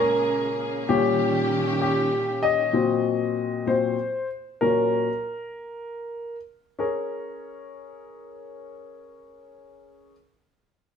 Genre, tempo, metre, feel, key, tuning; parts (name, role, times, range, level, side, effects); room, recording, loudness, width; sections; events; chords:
pop; 51-66 BPM (dotted quarters); 6/8; straight; Bb minor; A4 = 442 Hz
clear concert grand piano; accompaniment; 0.0-10.1 s; Bb2 to Eb5; -24 LUFS; left 2 dB
rich studio string section; sustained chords; 0.0-2.7 s; Bb2 to Ab4; -28 LUFS; right 2 dB
wet stone room reverb, RT60 1.1 s; band playing live in one room; -22 LUFS; side -7 dB against mid
0.0-6.8 A section; 6.8-11.0 B section
grand piano solo 0.0-6.8; slowing down 2.7-6.8
0.0 Bbm7; 0.9 Eb7/Bb; 2.7 Ebm6/Bb; 4.6 Bbm; 6.8 Bbm7